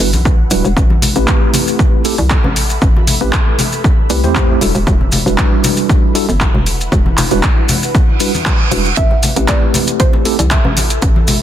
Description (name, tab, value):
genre	deep house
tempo	117 BPM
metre	4/4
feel	swing 53% on 16ths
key	A dorian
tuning	A4 = 440 Hz
part	mellow tine electric piano	stabs	0.0-10.4 s	G3 to C5	-18 LUFS	right 1 dB	medium stereo tremolo, sidechain pumping, low-pass filter, dub echo
part	hollow knocking FM bass	bass	0.0-11.4 s	D1 to E2	-16 LUFS	equal	sidechain pumping
part	deep house drum kit	drums	0.0-11.4 s	handclaps, hi-hat	-19 LUFS	right 1 dB	overdrive
part	maracas	percussion	0.0-11.4 s	none	-23 LUFS	left 1 dB	none
part	ethereal airy pad	texture	0.0-11.4 s	E4 to B5	-27 LUFS	left 1 dB	ensemble chorus, built-in reverb, phaser, sidechain pumping
part	congas	percussion	0.1-11.4 s	none	-20 LUFS	left 2 dB	none
part	electronic kick drum	drums	0.3-11.1 s	none	-13 LUFS	equal	none
part	reverse cymbal	sound effects	8.1-9.0 s	none	-21 LUFS	right 6 dB	none
part	soft round pluck	melody	9.0-10.9 s	C5 to E5	-22 LUFS	right 2 dB	chorus, ping-pong delay
room	digital ambience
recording	dense, heavily limited modern master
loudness	-10 LUFS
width	side -11 dB against mid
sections	0.0-11.4 A section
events	fade-in on ambient pad 0.0-11.4; reverse cymbal 8.1-9.0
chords	0.0 Em9; 0.8 Am9; 4.6 Em9; 9.0 Am9